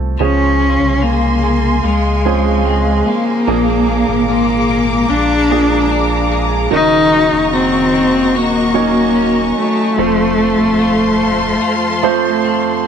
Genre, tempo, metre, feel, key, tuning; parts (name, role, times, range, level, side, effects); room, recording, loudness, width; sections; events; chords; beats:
pop; 74 BPM; 4/4; straight; A4 = 440 Hz
warm concert grand piano; accompaniment; 0.0-12.9 s; Bb2 to Db5; -18 LUFS; right 13 dB
warm sub bass; bass; 0.0-11.6 s; Eb1 to Db2; -20 LUFS; equal
warm cello; melody; 0.2-12.5 s; Ab3 to Eb4; -14 LUFS; left 2 dB
warm symphonic string section; sustained chords; 0.2-12.9 s; F4 to D6; -20 LUFS; left 1 dB
twelve-string electric guitar; arpeggios; 0.2-12.9 s; F2 to Gb4; -23 LUFS; left 10 dB; phaser
moderate echo chamber reverb, RT60 2.1 s; 1960s-style stereo with parts hard left and right; -11 LUFS; side -7 dB against mid
0.2-12.9 A section
0.2 Dbmaj7; 3.5 Bb7; 6.7 Ebm7; 10.0 F
| 0.20 1.02 1.84 2.66 | 3.48 4.29 5.10 5.91 | 6.71 7.53 8.34 9.15 | 9.97 10.79 11.62 12.45